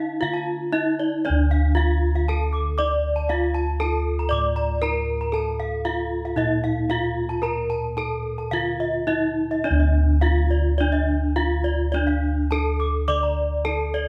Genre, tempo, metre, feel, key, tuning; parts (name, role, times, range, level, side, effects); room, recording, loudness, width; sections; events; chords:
Balinese gamelan; 105-118 BPM; 4/4; straight; D pelog; A4 = 440 Hz
gamelan-type bronze metallophone; melody; 0.0-14.1 s; D4 to D5; -27 LUFS; equal
gamelan-type bronze metallophone; arpeggios; 0.0-14.1 s; D5 to D6; -32 LUFS; equal
gamelan-type bossed gongs; bass; 0.0-14.1 s; D2 to Bb4; -26 LUFS; equal
moderate stone room reverb, RT60 1.1 s; band playing live in one room; -23 LUFS; mono
0.0-1.3 A section; 1.3-9.7 B section; 9.7-14.1 A section